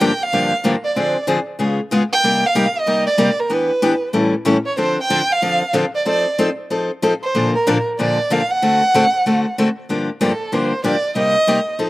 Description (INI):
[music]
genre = jazz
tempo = 188 BPM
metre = 4/4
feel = swing 59% on 8ths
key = G minor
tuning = A4 = 442 Hz
[part]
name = warm violin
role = melody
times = 0.0-11.8 s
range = A4 to G5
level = -18 LUFS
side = right 2 dB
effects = none
[part]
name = picked steel-string acoustic guitar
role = accompaniment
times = 0.0-11.9 s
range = G2 to A4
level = -18 LUFS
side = left 1 dB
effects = none
[sound]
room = little or no reverb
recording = recorded outdoors, with no room sound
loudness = -15 LUFS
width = side -18 dB against mid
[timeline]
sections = 0.0-9.9 A section; 9.9-11.9 B section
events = none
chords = 0.0 Gm7; 0.9 Dm7b5; 1.6 C#7; 2.2 Cm9; 3.5 Em7; 4.1 A7; 4.8 Dm7; 6.1 F7; 7.3 Bbmaj7; 8.6 D7; 9.9 Gm11; 11.2 Cm7